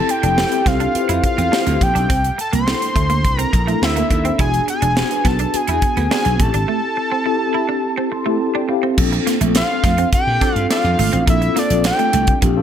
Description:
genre	polished 1980s jazz-funk pop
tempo	105 BPM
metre	4/4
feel	straight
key	unclear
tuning	A4 = 440 Hz
part	fat analog lead	melody	0.0-12.4 s	D5 to C6	-20 LUFS	equal	chorus, ping-pong delay
part	mellow tine electric piano	accompaniment	0.0-12.6 s	Bb3 to C6	-21 LUFS	left 3 dB	medium stereo tremolo, wide subtle chorus
part	electric guitar at the edge of break-up	riff	0.1-12.5 s	A3 to E4	-24 LUFS	right 8 dB	wide subtle chorus
part	crisp fusion drum kit	drums	0.1-12.6 s	crash cymbal, hi-hat, kick drum, snare drum	-20 LUFS	equal	gated reverb
part	slap bass	bass	0.2-12.6 s	E1 to Bb2	-20 LUFS	equal	none
part	dark horn section	second line	10.4-11.1 s	F3 to A4	-31 LUFS	left 2 dB	ping-pong delay
room	light reverb, small room ambience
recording	none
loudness	-15 LUFS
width	side -9 dB against mid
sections	0.0-9.0 A section; 9.0-12.6 B section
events	tine electric piano fill 7.8-9.0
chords	0.0 Fmaj7; 2.1 C13; 4.4 E7; 6.4 Am7; 9.0 Bbmaj7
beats	0.37 0.95 1.52 | 2.10 2.67 3.24 3.82 | 4.39 4.96 5.54 6.11 | 6.69 7.26 7.83 8.41 | 8.98 9.55 10.13 10.70 | 11.28 11.85 12.42

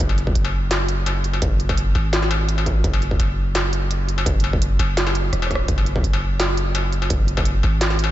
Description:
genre	half-time drum and bass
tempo	169 BPM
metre	4/4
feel	half-time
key	unclear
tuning	A4 = 440 Hz
part	long sustained 808-style bass	bass	0.0-8.1 s	E1 to G#1	-21 LUFS	equal	tube saturation
part	electronic kick drum	drums	0.0-7.4 s	none	-22 LUFS	equal	distortion
part	industrial drum kit	drums	0.0-8.1 s	hi-hat, rim click, snare drum, struck metal	-23 LUFS	left 1 dB	none
room	light reverb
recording	nothing above 7.8 kHz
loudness	-18 LUFS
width	side -14 dB against mid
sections	0.0-8.1 A section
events	drum fill 5.3-5.7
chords	none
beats	| 0.00 0.36 0.71 1.07 | 1.42 1.78 2.13 2.49 | 2.84 3.20 3.55 3.91 | 4.26 4.62 4.97 5.33 | 5.68 6.04 6.39 6.75 | 7.10 7.46 7.81

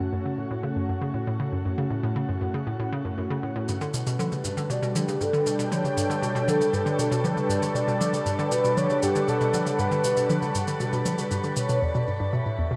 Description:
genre	ambient, sequencer-driven space music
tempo	118 BPM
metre	4/4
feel	straight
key	unclear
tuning	A4 = 442 Hz
part	lush unison pad	sustained chords	0.0-12.8 s	E3 to B5	-32 LUFS	equal	chorus
part	hollow square pluck	riff	0.0-12.8 s	E2 to D3	-30 LUFS	equal	chorus, tape echo
part	shaker and congas	percussion	3.7-11.8 s	none	-35 LUFS	equal	tape echo
part	mellow horn-like synth lead	melody	3.9-12.8 s	G4 to E5	-29 LUFS	equal	phaser, subtle chorus, tape echo
room	wet shimmer reverb, RT60 9.1 s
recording	none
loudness	-26 LUFS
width	mono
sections	0.0-11.8 A section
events	none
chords	0.0 F#m; 3.7 Gadd9; 11.8 Em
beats	0.13 0.64 1.15 | 1.65 2.16 2.67 3.18 | 3.69 4.20 4.70 5.21 | 5.72 6.23 6.74 7.25 | 7.75 8.26 8.77 9.28 | 9.79 10.30 10.81 11.31 | 11.82 12.33

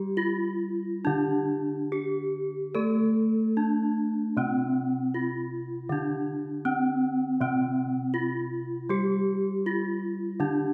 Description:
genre	gamelan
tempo	67-80 BPM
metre	4/4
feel	straight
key	D slendro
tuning	A4 = 440 Hz
part	gamelan-type bronze metallophone	melody	0.0-10.7 s	C4-25c to A4	-30 LUFS	equal	none
part	gamelan-type bronze metallophone	accompaniment	0.0-10.7 s	C3-25c to A3	-32 LUFS	equal	none
room	wet recital hall reverb, RT60 1.7 s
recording	heard from further back in the room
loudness	-28 LUFS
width	mono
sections	0.0-5.9 A section; 5.9-10.7 B section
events	none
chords	none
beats	0.19 1.07 1.92 | 2.76 3.57 4.37 5.14 | 5.90 6.65 7.40 8.15 | 8.90 9.65 10.40

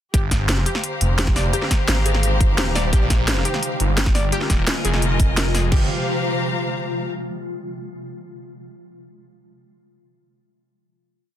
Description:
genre	dark technical drum and bass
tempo	172 BPM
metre	4/4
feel	straight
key	G phrygian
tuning	A4 = 440 Hz
part	swarming drone	sustained chords	0.8-5.9 s	C3 to G4	-28 LUFS	equal	built-in reverb, sidechain pumping
part	wide unison pluck	arpeggios	0.1-5.9 s	G4 to D5	-30 LUFS	left 2 dB	vintage 12-bit sampler grit, sidechain pumping, ping-pong delay
part	phased detuned saw bass	bass	0.1-5.9 s	Eb1 to Bb1	-21 LUFS	equal	phaser, tube saturation, sidechain pumping
part	drum and bass drum kit	drums	0.1-5.8 s	crash cymbal, kick drum	-19 LUFS	equal	none
part	drum and bass drum kit	drums	0.1-5.6 s	hi-hat, snare drum	-23 LUFS	equal	none
part	clear studio string section	texture	0.1-7.1 s	F4 to Bb5	-27 LUFS	left 3 dB	sidechain pumping
room	little or no reverb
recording	dense, heavily limited modern master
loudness	-17 LUFS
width	side -11 dB against mid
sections	0.1-5.7 drop; 5.7-7.1 final chord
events	drop 0.1-5.7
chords	0.1 Gm; 1.5 Ab; 2.9 Bb6; 4.3 Fm; 5.7 Gm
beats	| 0.14 0.49 0.83 1.18 | 1.53 1.88 2.23 2.58 | 2.93 3.28 3.63 3.98 | 4.32 4.67 5.02 5.37 | 5.72 6.07 6.42 6.77

